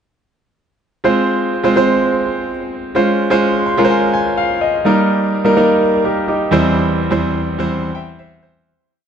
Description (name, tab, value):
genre	pop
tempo	126 BPM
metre	4/4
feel	straight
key	F minor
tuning	A4 = 439 Hz
part	clear concert grand piano	solo	1.0-8.9 s	E2 to C6	-13 LUFS	right 1 dB	none
room	moderate lush hall reverb, RT60 2.9 s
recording	dark, warm production, nothing above 10.3 kHz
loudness	-13 LUFS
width	side -8 dB against mid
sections	1.0-8.7 verse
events	grand piano fill 3.4-4.9; fade-out 6.8-8.7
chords	1.0 Fm; 2.9 Dbmaj7; 4.9 Eb; 6.5 C/E